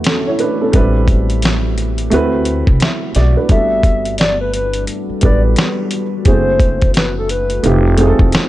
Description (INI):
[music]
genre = lo-fi hip hop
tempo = 87 BPM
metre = 4/4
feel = swing 61% on 16ths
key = unclear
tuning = A4 = 440 Hz
[part]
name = dark upright piano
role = accompaniment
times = 0.0-8.5 s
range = G3 to E5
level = -18 LUFS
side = right 2 dB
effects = none
[part]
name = deep dark ambient pad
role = sustained chords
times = 0.0-8.5 s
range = D3 to B4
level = -25 LUFS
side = left 1 dB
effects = chorus, built-in reverb
[part]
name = dusty soul sampler-style drum kit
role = drums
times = 0.0-8.5 s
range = hi-hat, kick drum, snare drum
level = -14 LUFS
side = equal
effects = vintage 12-bit sampler grit
[part]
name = upright bass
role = bass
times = 0.7-8.3 s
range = F1 to D2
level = -17 LUFS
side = equal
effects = none
[part]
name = hollow clarinet-like synth lead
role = melody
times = 3.5-7.8 s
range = A4 to E5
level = -18 LUFS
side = left 2 dB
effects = chorus
[sound]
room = light reverb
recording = none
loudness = -12 LUFS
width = side -15 dB against mid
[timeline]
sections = 0.0-8.5 A section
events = none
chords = 0.0 D6; 0.7 Am11; 2.1 D13; 3.5 Gmaj7; 6.3 F#m7b5; 7.6 F9